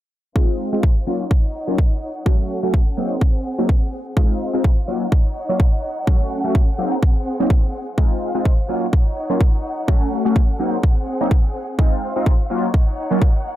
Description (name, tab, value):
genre	filtered disco house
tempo	126 BPM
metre	4/4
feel	swing 56% on 16ths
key	unclear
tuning	A4 = 445 Hz
part	funky polysynth comp	accompaniment	0.4-13.2 s	Gb3 to Gb4	-22 LUFS	equal	chorus, phaser, sidechain pumping, low-pass filter
part	rich studio violin section	sustained chords	0.4-13.6 s	C4 to Gb5	-28 LUFS	equal	sidechain pumping, low-pass filter
part	electronic kick drum	drums	0.4-13.3 s	none	-16 LUFS	equal	none
room	studio reverb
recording	none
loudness	-16 LUFS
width	side -14 dB against mid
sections	0.4-13.6 A section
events	filter sweep 0.4-13.6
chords	0.4 Ab6; 1.1 Ebm7; 2.3 Gbm; 3.0 Ab7; 4.2 Ab6; 4.9 Ebm7; 6.1 Gbm; 6.8 Ab7; 8.0 Ab6; 8.7 Ebm7; 9.9 Gbm; 10.6 Ab7; 11.8 Ab6; 12.5 Ebm7